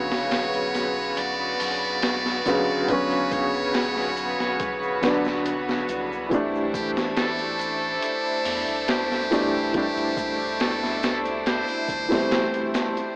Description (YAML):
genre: trip hop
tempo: 70 BPM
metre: 4/4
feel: straight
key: unclear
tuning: A4 = 440 Hz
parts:
  - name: trumpet with metal mute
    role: melody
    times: 0.0-12.7 s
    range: G4 to D5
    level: -32 LUFS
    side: equal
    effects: vintage 12-bit sampler grit, dub echo
  - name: dark upright piano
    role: accompaniment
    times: 0.0-13.2 s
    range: C#3 to D4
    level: -28 LUFS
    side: equal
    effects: tremolo, tape echo
  - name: clear studio violin section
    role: sustained chords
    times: 0.0-13.1 s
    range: A3 to C5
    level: -31 LUFS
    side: equal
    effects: vintage 12-bit sampler grit
  - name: round analog bass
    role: bass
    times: 0.0-12.3 s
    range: G1 to E2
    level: -45 LUFS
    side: equal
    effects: none
  - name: boom bap sampler-style drum kit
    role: drums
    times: 0.1-13.2 s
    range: hi-hat, kick drum, snare drum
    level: -31 LUFS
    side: equal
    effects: overdrive, vintage 12-bit sampler grit
  - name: triangle and tube shaker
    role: percussion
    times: 0.1-13.1 s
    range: none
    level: -51 LUFS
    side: equal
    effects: none
room: light reverb, small room reverb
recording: AM radio sound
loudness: -24 LUFS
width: mono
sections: 0.0-13.2 A section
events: none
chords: 0.0 Bmadd9; 6.3 C69